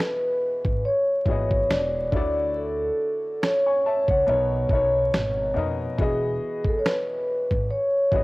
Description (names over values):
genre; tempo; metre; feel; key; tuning
lo-fi hip hop; 70 BPM; 4/4; swing 56% on 16ths; E major; A4 = 440 Hz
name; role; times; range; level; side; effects
vibraphone with soft mallets; melody; 0.0-8.2 s; G#4 to D5; -23 LUFS; equal; low-pass filter, cassette tape
warm upright piano; accompaniment; 0.0-8.2 s; B2 to C#6; -30 LUFS; left 3 dB; cassette tape, low-pass filter
dusty soul sampler-style drum kit; drums; 0.0-8.2 s; finger snaps, kick drum, snare drum; -25 LUFS; equal; cassette tape
upright bass; bass; 0.7-8.2 s; E1 to F2; -29 LUFS; equal; none
room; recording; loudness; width
wet spring reverb, RT60 2.1 s; home recording on cassette, vinyl crackle; -21 LUFS; side -21 dB against mid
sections
0.0-8.2 A section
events
break 0.0-8.2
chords
0.0 Emaj9; 2.1 Dmaj9; 4.3 Bmaj9; 6.0 Emaj9